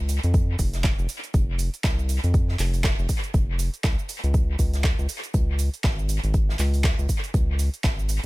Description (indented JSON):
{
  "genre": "deep house",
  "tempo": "120 BPM",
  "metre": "4/4",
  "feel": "swing 59% on 16ths",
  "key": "unclear",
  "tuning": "A4 = 442 Hz",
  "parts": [
    { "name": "round analog bass", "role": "bass", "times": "0.0-8.2 s", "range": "F1 to E#2", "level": "-24 LUFS", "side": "equal", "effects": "tube saturation, sidechain pumping" },
    { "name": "punchy analog drum machine", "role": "drums", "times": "0.1-8.3 s", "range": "handclaps, hi-hat, shaker", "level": "-31 LUFS", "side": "right 2 dB", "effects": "overdrive, dub echo" },
    { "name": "unplugged drum kit", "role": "drums", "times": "0.1-8.2 s", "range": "hi-hat, snare drum", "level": "-39 LUFS", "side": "right 2 dB", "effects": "sidechain pumping on hats, high-pass filter on hats, high-pass filter on snare, high-pass filter on room" },
    { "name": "electronic kick drum", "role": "drums", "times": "0.3-8.0 s", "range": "none", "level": "-22 LUFS", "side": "equal", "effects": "none" }
  ],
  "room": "little or no reverb",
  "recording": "echo-heavy mix",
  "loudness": "-21 LUFS",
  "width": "side -20 dB against mid",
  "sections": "0.0-8.3 A section",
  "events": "none",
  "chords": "none"
}